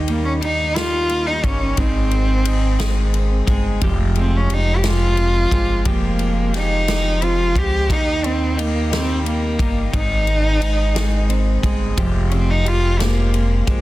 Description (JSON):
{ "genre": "six-eight pop ballad", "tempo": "59 BPM (dotted quarters)", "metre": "6/8", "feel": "straight", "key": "F minor", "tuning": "A4 = 439 Hz", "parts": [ { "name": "nylon-string guitar", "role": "accompaniment", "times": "0.0-13.8 s", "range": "Eb3 to G4", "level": "-26 LUFS", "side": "right 5 dB", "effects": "none" }, { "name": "direct-recorded clean electric guitar", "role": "arpeggios", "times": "0.0-13.8 s", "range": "F2 to Ab4", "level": "-29 LUFS", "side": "left 5 dB", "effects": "wide subtle chorus, tape echo" }, { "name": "upright bass", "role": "bass", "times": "0.0-13.8 s", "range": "F1 to Eb2", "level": "-20 LUFS", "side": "equal", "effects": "none" }, { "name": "warm cello", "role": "melody", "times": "0.1-13.7 s", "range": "Bb3 to G4", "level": "-21 LUFS", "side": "equal", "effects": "tape echo" }, { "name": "natural country drum kit", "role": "drums", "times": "0.1-13.8 s", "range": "kick drum, ride cymbal, snare drum", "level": "-24 LUFS", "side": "equal", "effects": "none" } ], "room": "studio ambience", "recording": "dense, heavily limited modern master", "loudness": "-16 LUFS", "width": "side -17 dB against mid", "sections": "0.0-13.8 A section", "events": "none", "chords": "0.0 Eb; 1.8 Ab; 3.8 Fmadd9; 7.9 Eb; 9.9 Ab; 12.0 Fmadd9" }